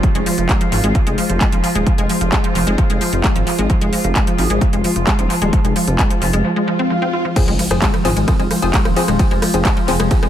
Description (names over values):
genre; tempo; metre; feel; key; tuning
driving peak-time techno; 131 BPM; 4/4; straight; F minor; A4 = 440 Hz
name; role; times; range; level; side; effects
resonant blip pluck; riff; 0.0-10.3 s; F3 to F4; -19 LUFS; equal; chorus, tube saturation, sidechain pumping, tape echo
overtone-sweeping drone; drone; 0.0-10.3 s; F3 to F4; -25 LUFS; right 1 dB; chorus, built-in reverb, phaser, sidechain pumping
electronic kick drum; drums; 0.0-10.2 s; none; -17 LUFS; equal; overdrive
techno drum kit; drums; 0.0-10.3 s; crash cymbal, handclaps, hi-hat, ride cymbal, rim click; -22 LUFS; equal; overdrive, dub echo
dark detuned saw bass; bass; 0.2-10.3 s; Eb1 to Ab1; -20 LUFS; equal; tube saturation, sidechain pumping
swell and impact; sound effects; 6.6-9.2 s; none; -25 LUFS; equal; none
wavetable chord stab; stabs; 7.4-10.2 s; F3 to Ab4; -22 LUFS; left 4 dB; sidechain pumping, tape echo
room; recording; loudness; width
light reverb, digital ambience; echo-heavy mix; -14 LUFS; side -11 dB against mid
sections
0.0-7.4 A section; 7.4-10.3 B section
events
break 6.4-7.4; swell 6.6-7.4; drop 7.4-10.3; impact 7.4-9.2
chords
0.0 Fm